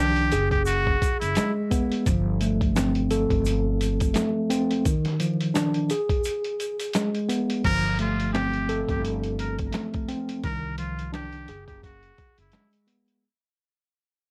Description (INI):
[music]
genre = hip hop, boom-bap hip-hop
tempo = 86 BPM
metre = 4/4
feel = swing 56% on 16ths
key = unclear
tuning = A4 = 439 Hz
[part]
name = trumpet with straight mute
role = melody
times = 0.0-1.5, 7.7-12.7 s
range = E4 to Bb4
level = -31 LUFS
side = equal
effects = none
[part]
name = mellow tine electric piano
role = accompaniment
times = 0.0-13.3 s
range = Eb3 to A4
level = -28 LUFS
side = equal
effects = cassette tape
[part]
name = upright bass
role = bass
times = 0.0-12.5 s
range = F#1 to C2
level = -31 LUFS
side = equal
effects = none
[part]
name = lo-fi sampler-style drum kit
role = drums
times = 0.2-13.2 s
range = crash cymbal, hi-hat, kick drum, snare drum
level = -31 LUFS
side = equal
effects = overdrive
[part]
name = egg shaker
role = percussion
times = 0.3-7.5 s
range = none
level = -43 LUFS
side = equal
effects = none
[sound]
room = little or no reverb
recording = dry, gritty hardware recording, vinyl crackle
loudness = -25 LUFS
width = mono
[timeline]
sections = 0.0-7.6 A section; 7.6-13.2 B section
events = break 6.3-7.6; fade-out 7.6-13.2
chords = 0.3 F#sus24; 2.1 G9sus4; 4.9 Ebsus2; 5.9 Abm; 7.6 G9sus4; 10.4 Cmadd9; 11.5 F#sus24